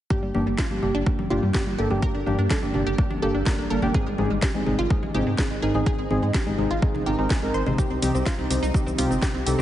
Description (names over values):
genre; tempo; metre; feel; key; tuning
progressive house; 125 BPM; 4/4; straight; G minor; A4 = 436 Hz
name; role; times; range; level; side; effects
shimmering ambient pad; sustained chords; 1.7-9.6 s; C3 to G4; -33 LUFS; equal; chorus, built-in reverb, phaser, sidechain pumping
wide unison pluck; arpeggios; 0.1-9.6 s; G3 to C5; -29 LUFS; equal; sidechain pumping, digital delay
deep mellow chord stab; stabs; 0.1-9.6 s; G2 to C5; -26 LUFS; equal; chorus, sidechain pumping, digital delay
electronic kick drum; drums; 0.1-9.3 s; none; -23 LUFS; equal; overdrive
round analog bass; bass; 0.2-9.6 s; G1 to Ab2; -29 LUFS; equal; sidechain pumping
congas; percussion; 0.3-9.6 s; none; -35 LUFS; left 1 dB; none
house drum kit; drums; 0.6-9.6 s; hi-hat, shaker, snare drum; -31 LUFS; equal; none
room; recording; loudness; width
moderate lush hall reverb, RT60 1.6 s, digital ambience; heavily compressed radio sound, nothing above 10.7 kHz; -21 LUFS; side -12 dB against mid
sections
0.1-9.6 A section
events
filter sweep on ambient pad 0.1-9.6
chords
0.1 Gm; 3.9 Ab; 7.8 Cm